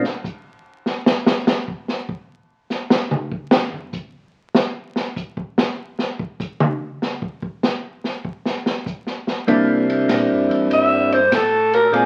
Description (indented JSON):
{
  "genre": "soul jazz organ trio",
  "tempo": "98 BPM",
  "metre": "4/4",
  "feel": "swing 68% on 8ths",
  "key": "unclear",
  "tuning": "A4 = 441 Hz",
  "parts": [
    { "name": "percussive tonewheel organ", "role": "melody", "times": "0.0, 9.5-12.1 s", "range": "G3 to D5", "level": "-20 LUFS", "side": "equal", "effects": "slow rotary speaker" },
    { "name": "tonewheel organ", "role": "bass", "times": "0.0, 9.5-12.1 s", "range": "E2 to C3", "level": "-32 LUFS", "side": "equal", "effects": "slow rotary speaker" },
    { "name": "open jazz drum kit", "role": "drums", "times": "0.0-12.1 s", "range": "hi-hat, kick drum, ride cymbal, snare drum, toms", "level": "-23 LUFS", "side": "equal", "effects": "none" },
    { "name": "hollow-body jazz guitar", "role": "accompaniment", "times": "9.5-9.9 s", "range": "Bb3 to E4", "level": "-20 LUFS", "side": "equal", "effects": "none" },
    { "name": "growling alto saxophone", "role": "melody", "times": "10.7-12.1 s", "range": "Ab4 to E5", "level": "-17 LUFS", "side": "equal", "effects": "none" }
  ],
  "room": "moderate large studio reverb, RT60 0.8 s",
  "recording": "very old 78 rpm record, vinyl crackle",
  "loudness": "-20 LUFS",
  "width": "mono",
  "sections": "0.0-12.1 A section",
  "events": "alto saxophone solo 0.0-12.1; drum solo 0.0-9.5",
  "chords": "0.0 N.C.; 9.5 C9",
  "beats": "0.24 0.86 1.48 | 2.09 2.71 3.32 3.94 | 4.55 5.17 5.78 6.40 | 7.01 7.63 8.24 8.86 | 9.47 10.08 10.70 11.31 | 11.93"
}